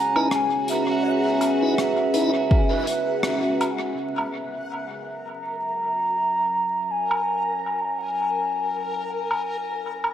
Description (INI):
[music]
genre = ambient dub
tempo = 82 BPM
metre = 4/4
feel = swing 59% on 16ths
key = F# mixolydian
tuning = A4 = 437 Hz
[part]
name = mellow hollow wooden flute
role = melody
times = 0.0-9.4 s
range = C#5 to A#5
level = -24 LUFS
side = equal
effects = dub echo
[part]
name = deep dark ambient pad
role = sustained chords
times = 0.0-10.1 s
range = C#4 to F#5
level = -27 LUFS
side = equal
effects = chorus, built-in reverb
[part]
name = backwards swelling texture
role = texture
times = 0.0-10.1 s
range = F#4 to A#5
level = -32 LUFS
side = right 1 dB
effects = built-in reverb
[part]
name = tonewheel organ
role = stabs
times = 0.2-2.3 s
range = D#4 to B4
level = -30 LUFS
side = right 1 dB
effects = fast rotary speaker, dub echo
[part]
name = crisp fusion drum kit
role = drums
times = 0.2-10.1 s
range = hi-hat, rim click, woodblock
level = -30 LUFS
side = equal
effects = dub echo
[part]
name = electronic kick drum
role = drums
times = 2.5-2.7 s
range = none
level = -19 LUFS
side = equal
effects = overdrive
[sound]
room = moderate echo chamber reverb, RT60 2.1 s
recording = echo-heavy mix, vinyl crackle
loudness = -21 LUFS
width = side -10 dB against mid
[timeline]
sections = 0.0-4.0 A section; 4.0-10.1 B section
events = band accent 3.2-3.6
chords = 0.0 C#m7; 4.0 F#7